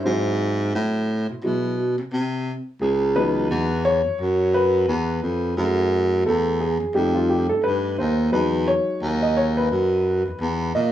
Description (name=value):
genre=hip hop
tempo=87 BPM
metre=4/4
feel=swing 58% on 16ths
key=C# minor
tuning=A4 = 440 Hz
part: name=dark upright piano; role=accompaniment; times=0.0-10.9 s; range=E3 to D#5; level=-23 LUFS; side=left 1 dB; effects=cassette tape
part: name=breathy baritone saxophone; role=bass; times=0.0-10.9 s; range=C#2 to B#2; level=-21 LUFS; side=equal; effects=none
room=light reverb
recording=home recording on cassette, vinyl crackle, small room ambience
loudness=-19 LUFS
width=side -11 dB against mid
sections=0.0-2.8 A section; 2.8-10.9 B section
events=upright piano solo 0.0-2.8, 2.8-10.9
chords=0.1 G#7alt; 2.8 C#m11; 5.6 F#m7; 7.0 F9; 8.3 Emaj9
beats=| 0.05 0.74 1.43 2.12 | 2.81 3.50 4.19 4.88 | 5.57 6.26 6.95 7.64 | 8.33 9.02 9.71 10.40